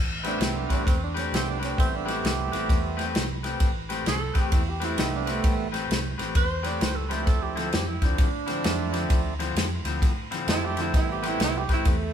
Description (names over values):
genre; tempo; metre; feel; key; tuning
electric blues shuffle; 131 BPM; 4/4; swing 63% on 8ths; A minor; A4 = 436 Hz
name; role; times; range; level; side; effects
vintage muted fingered electric bass; bass; 0.0-12.1 s; A1 to A2; -32 LUFS; right 1 dB; none
percussive tonewheel organ; accompaniment; 0.2-11.6 s; F3 to G4; -33 LUFS; right 6 dB; overdrive
electric guitar at the edge of break-up; riff; 0.2-12.0 s; D3 to B4; -31 LUFS; left 5 dB; spring reverb
natural country drum kit; drums; 0.2-12.0 s; kick drum, ride cymbal, snare drum; -26 LUFS; equal; none
mellow tenor saxophone; second line; 0.3-12.1 s; A3 to D5; -31 LUFS; right 5 dB; none
room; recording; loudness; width
moderate stone room reverb, RT60 1.1 s; band playing live in one room; -23 LUFS; side -9 dB against mid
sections
0.0-12.1 A section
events
tenor saxophone solo 0.0-12.1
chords
0.0 Am9; 7.3 Dm9; 10.9 Am9